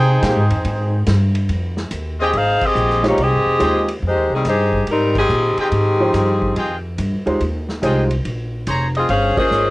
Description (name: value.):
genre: jazz, big band swing.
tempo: 142 BPM.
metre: 4/4.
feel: swing 67% on 8ths.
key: F minor.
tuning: A4 = 440 Hz.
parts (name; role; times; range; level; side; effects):
brilliant trumpet section; melody; 0.0-1.0 s; Eb4 to G5; -21 LUFS; right 1 dB; none.
muted trombone section; second line; 0.0-1.0 s; C4 to Ab4; -25 LUFS; right 2 dB; cassette tape.
upright bass; bass; 0.0-9.7 s; F1 to C3; -19 LUFS; equal; none.
vintage drum kit; drums; 0.2-9.6 s; crash cymbal, hi-hat, kick drum, ride cymbal, snare drum; -28 LUFS; equal; cassette tape.
warm saxophone section; melody; 2.2-9.7 s; Eb3 to F5; -16 LUFS; left 1 dB; none.
brilliant trumpet section; stabs; 2.2-8.9 s; F4 to Bb5; -23 LUFS; equal; cassette tape.
clear upright piano; accompaniment; 3.0-9.7 s; F3 to G5; -19 LUFS; right 1 dB; cassette tape.
room: light reverb.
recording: home recording on cassette.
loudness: -15 LUFS.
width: side -20 dB against mid.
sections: 0.0-1.5 A section; 1.5-9.7 B section.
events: band accent 2.5, 5.1, 9.3.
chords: 0.0 Fm9; 8.2 Bbm9.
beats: 0.23 0.65 1.07 | 1.49 1.92 2.34 2.76 | 3.18 3.61 4.03 4.45 | 4.87 5.29 5.72 6.14 | 6.56 6.98 7.40 7.83 | 8.25 8.67 9.09 9.51.